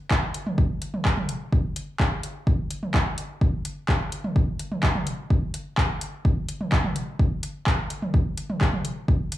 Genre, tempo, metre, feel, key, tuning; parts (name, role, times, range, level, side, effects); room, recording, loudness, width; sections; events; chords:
techno; 127 BPM; 4/4; straight
deep house drum kit; drums; 0.1-9.4 s; handclaps, hi-hat, toms; -28 LUFS; equal; overdrive
electronic kick drum; drums; 0.1-9.2 s; -23 LUFS; equal; overdrive
light reverb, digital ambience; small room ambience; -23 LUFS; side -14 dB against mid
0.0-9.4 A section